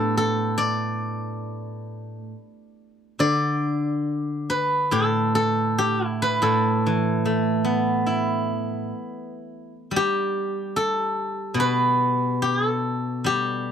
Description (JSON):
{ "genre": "chinese traditional, Chinese solo plucked strings", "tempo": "72 BPM", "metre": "4/4", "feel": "rubato", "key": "unclear", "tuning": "A4 = 441 Hz", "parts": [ { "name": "steel-string zither", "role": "solo", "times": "0.0-13.7 s", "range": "A2 to D5", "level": "-21 LUFS", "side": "equal", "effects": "none" } ], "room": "moderate booth ambience, RT60 0.2 s", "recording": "dry, close 1970s-style studio recording", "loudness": "-21 LUFS", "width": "side -8 dB against mid", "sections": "0.0-13.7 A section", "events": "none", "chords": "none" }